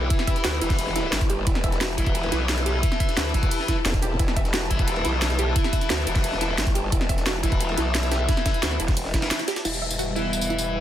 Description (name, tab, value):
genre	dark technical drum and bass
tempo	176 BPM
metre	4/4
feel	straight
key	E minor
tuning	A4 = 442 Hz
part	wide unison pluck	arpeggios	0.0-10.6 s	E4 to E5	-31 LUFS	right 3 dB	sidechain pumping, dub echo
part	thick fuzz guitar	stabs	0.0-10.8 s	E4 to E5	-30 LUFS	left 2 dB	distortion, low-pass filter, dub echo
part	growl bass	bass	0.0-10.8 s	E1 to D2	-27 LUFS	equal	chorus, overdrive, sidechain pumping
part	dark studio string section	texture	0.0-10.8 s	E4 to A5	-33 LUFS	left 3 dB	sidechain pumping
part	breakbeat sampler-style drum kit	drums	0.1-9.6 s	hi-hat, ride cymbal, snare drum	-35 LUFS	right 1 dB	none
part	drum and bass drum kit	drums	0.1-10.7 s	crash cymbal, hi-hat, snare drum, tambourine	-28 LUFS	equal	overdrive
part	electronic kick drum	drums	0.1-9.2 s	none	-23 LUFS	equal	overdrive
part	formant-sweep wobble bass	bass	3.9-4.2 s	E1	-25 LUFS	equal	chorus
part	dark analog pad	sustained chords	9.6-10.8 s	G3 to B4	-31 LUFS	left 2 dB	chorus, sidechain pumping
room	little or no reverb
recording	dense, heavily limited modern master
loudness	-21 LUFS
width	side -11 dB against mid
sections	0.0-9.7 A section; 9.7-10.8 B section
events	band accent 9.3; filter sweep on synth arpeggio sound 9.7-10.8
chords	0.0 Em